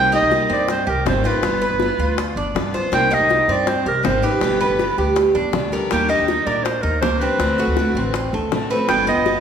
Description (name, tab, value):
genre	latin, Cuban son and guajira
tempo	161 BPM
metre	4/4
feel	straight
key	C minor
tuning	A4 = 440 Hz
part	breathy clarinet	melody	0.0-9.4 s	Bb4 to G5	-20 LUFS	right 2 dB	none
part	picked steel-string acoustic guitar	accompaniment	0.0-9.4 s	B2 to G4	-26 LUFS	left 2 dB	none
part	Cuban tres	arpeggios	0.0-9.4 s	A3 to C5	-22 LUFS	right 2 dB	none
part	upright bass	bass	0.0-9.3 s	G1 to G2	-25 LUFS	equal	none
part	bongos	percussion	0.3-9.4 s	none	-25 LUFS	left 5 dB	none
room	wet recital hall reverb, RT60 1.6 s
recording	recorded in a church or concert hall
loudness	-16 LUFS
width	side -8 dB against mid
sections	0.0-9.4 A section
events	none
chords	0.0 Cm7; 1.4 G7; 2.9 Cm7; 4.4 G; 5.9 Ebmaj7; 7.4 D7; 8.9 G7